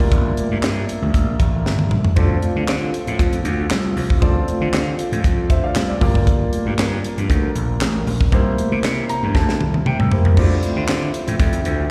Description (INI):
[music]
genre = early-eighties boogie funk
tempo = 117 BPM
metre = 4/4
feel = straight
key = D minor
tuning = A4 = 440 Hz
[part]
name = warm concert grand piano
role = accompaniment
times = 0.0-11.9 s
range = Bb3 to Bb5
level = -27 LUFS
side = equal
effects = plate reverb, slapback echo
[part]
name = mellow brass ensemble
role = sustained chords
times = 0.0-11.9 s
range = C3 to E5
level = -33 LUFS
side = equal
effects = plate reverb
[part]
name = gritty slap bass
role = bass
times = 0.0-11.9 s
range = G1 to D3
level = -24 LUFS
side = equal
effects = overdrive
[part]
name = tight funk drum kit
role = drums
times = 0.0-11.8 s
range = crash cymbal, handclaps, hi-hat, kick drum, snare drum, toms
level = -21 LUFS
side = equal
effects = none
[part]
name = congas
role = percussion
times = 0.1-11.8 s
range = none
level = -32 LUFS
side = equal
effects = none
[sound]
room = light reverb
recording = live gig heard through the venue's PA, recital hall reverb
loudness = -19 LUFS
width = mono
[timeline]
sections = 0.0-10.4 A section; 10.4-11.9 B section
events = drum fill 1.7-2.2, 9.3-10.4; grand piano fill 8.8-10.4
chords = 0.0 Gm7; 2.2 Dm7; 6.0 Gm7; 8.3 C7; 10.4 Dm11